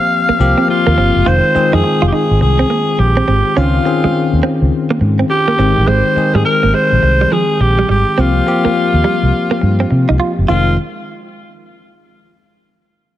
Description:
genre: R&B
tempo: 104 BPM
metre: 4/4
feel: swing 63% on 16ths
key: F minor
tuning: A4 = 439 Hz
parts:
  - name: growling alto saxophone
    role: melody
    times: 0.0-10.8 s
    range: F4 to F5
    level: -15 LUFS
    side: equal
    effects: none
  - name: bell-like tine electric piano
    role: accompaniment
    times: 0.0-10.8 s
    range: Eb3 to Ab4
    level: -17 LUFS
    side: left 3 dB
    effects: slow stereo tremolo
  - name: direct-recorded clean electric guitar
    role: riff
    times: 0.3-10.7 s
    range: F3 to F4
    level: -20 LUFS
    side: right 5 dB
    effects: wide subtle chorus
  - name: vintage muted fingered electric bass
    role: bass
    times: 0.3-10.8 s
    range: F1 to C3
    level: -14 LUFS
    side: equal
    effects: none
room: light reverb, digital ambience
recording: none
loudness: -10 LUFS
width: side -13 dB against mid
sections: 0.0-1.3 A section; 1.3-10.5 B section; 10.5-12.8 C section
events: none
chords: 0.0 C7sus4; 1.3 Fm7; 3.6 Dbmaj9; 5.6 Abmaj7; 8.2 C7sus4; 10.5 Fm7

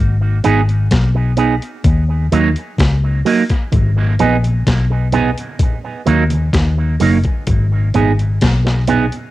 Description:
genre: dub reggae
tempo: 64 BPM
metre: 4/4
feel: straight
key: G# minor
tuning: A4 = 440 Hz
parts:
  - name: vintage muted fingered electric bass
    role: bass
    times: 0.0-9.1 s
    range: F#1 to D#2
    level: -14 LUFS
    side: left 1 dB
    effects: transformer saturation
  - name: electric guitar with an envelope filter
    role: accompaniment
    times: 0.4-9.1 s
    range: F#3 to G#4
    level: -18 LUFS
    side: right 6 dB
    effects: wide subtle chorus, cassette tape, dub echo, plate reverb
  - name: boom bap sampler-style drum kit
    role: drums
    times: 0.4-9.3 s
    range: hi-hat, kick drum, snare drum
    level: -17 LUFS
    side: left 1 dB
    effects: cassette tape
  - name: congas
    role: percussion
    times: 3.7-9.1 s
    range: none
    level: -27 LUFS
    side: right 6 dB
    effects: none
room: light reverb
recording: home recording on cassette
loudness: -12 LUFS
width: side -16 dB against mid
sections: 0.0-9.3 A section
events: break 0.0-3.7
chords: 0.0 G#m; 1.8 D#m; 3.7 G#m; 5.6 D#m; 7.5 G#m

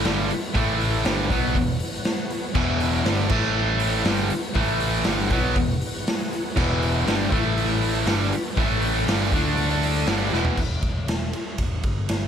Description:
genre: hard rock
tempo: 120 BPM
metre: 4/4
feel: straight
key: unclear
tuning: A4 = 441 Hz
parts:
  - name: overdriven tonewheel organ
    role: sustained chords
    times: 0.0-10.6 s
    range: E3 to F#5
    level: -35 LUFS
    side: right 1 dB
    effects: none
  - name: cranked stack guitar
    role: riff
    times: 0.0-10.6 s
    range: E2 to D4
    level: -28 LUFS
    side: left 11 dB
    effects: overdrive
  - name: distorted electric guitar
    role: riff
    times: 0.0-10.6 s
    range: E2 to D4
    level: -30 LUFS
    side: left 1 dB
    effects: distortion
  - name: tight distorted guitar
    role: riff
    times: 0.0-10.6 s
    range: E2 to D4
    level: -26 LUFS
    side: right 11 dB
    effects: distortion
  - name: raw garage drum kit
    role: drums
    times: 0.0-12.2 s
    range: crash cymbal, hi-hat, kick drum, ride cymbal, snare drum, toms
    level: -25 LUFS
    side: equal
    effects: none
  - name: overdriven picked electric bass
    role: bass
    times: 0.1-12.3 s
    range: E1 to D2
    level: -26 LUFS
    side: equal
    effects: none
room: light reverb, studio ambience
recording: none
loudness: -20 LUFS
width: side -8 dB against mid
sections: 0.0-10.6 A section; 10.6-12.3 B section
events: drum fill 10.3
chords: 0.0 E5; 0.6 A5; 1.1 E5; 3.3 A5; 4.1 E5; 4.6 A5; 5.1 E5; 7.3 A5; 8.1 E5; 8.6 A5; 9.1 E5; 9.3 D5; 10.1 E5; 10.6 N.C.

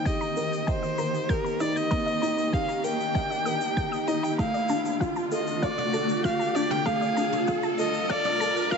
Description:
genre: piano and strings electronica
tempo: 97 BPM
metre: 4/4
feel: straight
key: unclear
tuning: A4 = 441 Hz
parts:
  - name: warm violin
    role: melody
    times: 0.0-8.8 s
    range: Bb4 to G5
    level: -28 LUFS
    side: equal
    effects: none
  - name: granular cloud pad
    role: sustained chords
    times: 0.0-8.8 s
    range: D3 to G4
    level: -32 LUFS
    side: right 1 dB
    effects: built-in reverb, sidechain pumping
  - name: felt-muted upright piano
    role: riff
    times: 0.0-8.8 s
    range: A3 to Eb5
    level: -29 LUFS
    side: left 2 dB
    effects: none
  - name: dark detuned saw bass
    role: bass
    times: 0.0-8.8 s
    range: none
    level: barely audible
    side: none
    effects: none
  - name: riser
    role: sound effects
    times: 0.2-8.8 s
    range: none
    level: -34 LUFS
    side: right 1 dB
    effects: none
  - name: analog pluck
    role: arpeggios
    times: 0.1-8.8 s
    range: A4 to G6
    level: -38 LUFS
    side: left 2 dB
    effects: chorus, cassette tape, sidechain pumping, ping-pong delay
  - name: electronic kick drum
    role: drums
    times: 0.1-8.8 s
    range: none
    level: -29 LUFS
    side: equal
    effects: none
  - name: shaker and toms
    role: drums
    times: 0.1-8.8 s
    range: none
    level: -42 LUFS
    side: left 2 dB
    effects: none
room: moderate huge ambient reverb, RT60 6.1 s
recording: high-pass filter, nothing above 7.9 kHz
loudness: -24 LUFS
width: side -5 dB against mid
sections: 0.0-8.8 A section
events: build-up 0.0-8.8; filter sweep 0.0-8.8; riser 0.2-8.8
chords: 0.0 Eb; 4.4 Dm

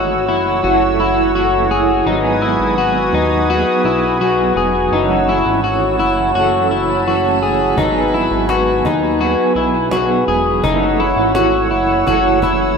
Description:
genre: dream pop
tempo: 84 BPM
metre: 4/4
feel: straight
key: unclear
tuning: A4 = 440 Hz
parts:
  - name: electric guitar at the edge of break-up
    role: accompaniment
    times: 0.0-12.8 s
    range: F#2 to A4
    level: -20 LUFS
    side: right 8 dB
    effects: tremolo, analog chorus
  - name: warm analog pad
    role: sustained chords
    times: 0.0-12.8 s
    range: F#4 to E6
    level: -18 LUFS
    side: equal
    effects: chorus
  - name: electric guitar at the edge of break-up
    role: arpeggios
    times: 0.0-12.8 s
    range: D#4 to G#4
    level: -17 LUFS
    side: left 5 dB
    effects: analog chorus, tape echo
  - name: chorused synth bass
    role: bass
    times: 0.0-12.8 s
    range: E1 to D#2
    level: -23 LUFS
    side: right 1 dB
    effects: none
  - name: drifting glass-harmonics texture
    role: texture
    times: 4.4-12.8 s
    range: F#5 to F#6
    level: -30 LUFS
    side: right 1 dB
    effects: chorus, built-in reverb, tape echo
  - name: cajon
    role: drums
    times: 7.8-12.6 s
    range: none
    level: -26 LUFS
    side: right 1 dB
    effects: none
room: light reverb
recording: rough home demo mix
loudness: -13 LUFS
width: side -5 dB against mid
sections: 0.0-12.8 A section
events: none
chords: 0.0 F#m7; 2.1 G#m7; 4.9 F#m7; 7.8 G#m7; 10.6 F#m7

